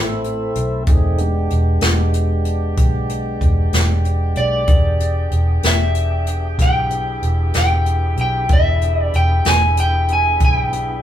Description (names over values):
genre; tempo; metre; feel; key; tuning
slow blues; 63 BPM (dotted quarters); 12/8; straight; unclear; A4 = 441 Hz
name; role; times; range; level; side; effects
mellow horn section; sustained chords; 0.0-11.0 s; E4 to G5; -30 LUFS; equal; none
tonewheel organ; sustained chords; 0.0-11.0 s; G#3 to A4; -27 LUFS; right 1 dB; slow rotary speaker
vintage muted fingered electric bass; bass; 0.0-11.0 s; E1 to B1; -18 LUFS; equal; none
jazz brush drum kit; drums; 0.2-10.9 s; hi-hat, kick drum, snare drum; -18 LUFS; equal; none
electric guitar at the edge of break-up; melody; 4.4-11.0 s; D5 to G#5; -19 LUFS; equal; spring reverb
room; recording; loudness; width
moderate studio reverb, RT60 0.6 s; band playing live in one room; -14 LUFS; side -11 dB against mid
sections
0.0-11.0 A section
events
none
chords
0.0 Am; 0.9 E7#9